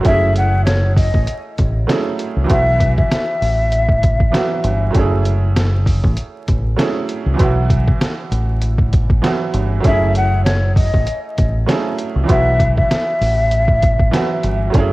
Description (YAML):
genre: hip hop, boom-bap hip-hop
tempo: 98 BPM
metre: 4/4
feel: swing 55% on 16ths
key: F# minor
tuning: A4 = 444 Hz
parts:
  - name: bright upright piano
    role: accompaniment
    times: 0.0-14.9 s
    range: E3 to G#4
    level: -22 LUFS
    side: right 4 dB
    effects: cassette tape
  - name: trip hop sampler-style drum kit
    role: drums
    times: 0.0-14.9 s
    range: hi-hat, kick drum, snare drum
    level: -17 LUFS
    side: equal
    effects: cassette tape
  - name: breathy mellow jazz flute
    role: melody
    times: 0.1-4.9, 9.9-14.7 s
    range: C#5 to F#5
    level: -19 LUFS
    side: left 2 dB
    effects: cassette tape, analog delay
  - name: deep dub fingered electric bass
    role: bass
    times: 0.1-14.9 s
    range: F#1 to B#1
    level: -16 LUFS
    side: equal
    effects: none
room: small room ambience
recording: home recording on cassette, vinyl crackle, lossy compression artefacts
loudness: -13 LUFS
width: side -19 dB against mid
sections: 0.1-14.9 A section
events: none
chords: 0.1 F#m7; 2.5 Bsus4; 4.9 F#m7; 7.4 Bsus4; 9.8 F#m7; 12.3 Bsus4